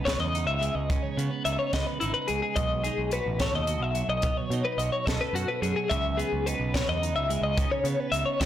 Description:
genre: math rock and midwest emo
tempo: 72 BPM (dotted quarters)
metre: 6/8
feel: straight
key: unclear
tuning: A4 = 440 Hz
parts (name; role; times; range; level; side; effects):
- twelve-string electric guitar; accompaniment; 0.0-8.5 s; B2 to B4; -34 LUFS; right 9 dB; warbly pitch drift
- twelve-string electric guitar; arpeggios; 0.0-8.5 s; E4 to E5; -28 LUFS; left 4 dB; tremolo, slapback echo
- growling picked electric bass; bass; 0.0-8.5 s; G#1 to C#3; -31 LUFS; right 1 dB; overdrive
- crisp fusion drum kit; drums; 0.1-8.5 s; hi-hat, kick drum, snare drum; -31 LUFS; equal; none
room: light reverb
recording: blown-out, overdriven recording, overdrive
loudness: -25 LUFS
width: side -11 dB against mid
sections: 0.0-8.5 A section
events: none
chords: 0.0 C#m9; 2.6 B13; 5.9 C#m11

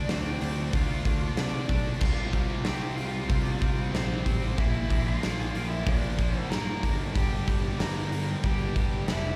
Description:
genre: quiet-loud alternative rock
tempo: 93 BPM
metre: 4/4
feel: straight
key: G dorian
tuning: A4 = 438 Hz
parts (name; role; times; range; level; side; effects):
- lead guitar through a small cranked amp; melody; 0.0-9.4 s; C4 to Bb5; -39 LUFS; equal; overdrive, slapback echo
- raw garage guitar; riff; 0.0-9.4 s; G2 to D4; -40 LUFS; equal; overdrive
- tight distorted guitar; riff; 0.0-9.4 s; G2 to D4; -39 LUFS; equal; distortion, slapback echo
- growling fingered electric bass; bass; 0.0-9.4 s; F1 to C3; -34 LUFS; equal; overdrive
- huge arena drum kit; drums; 0.1-9.2 s; crash cymbal, hi-hat, kick drum, snare drum; -31 LUFS; equal; none
room: little or no reverb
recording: live gig heard through the venue's PA, recital hall reverb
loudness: -28 LUFS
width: mono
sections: 0.0-9.4 A section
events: none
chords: 0.0 Dm7; 2.0 Csus4; 4.6 Bb; 6.8 Gm

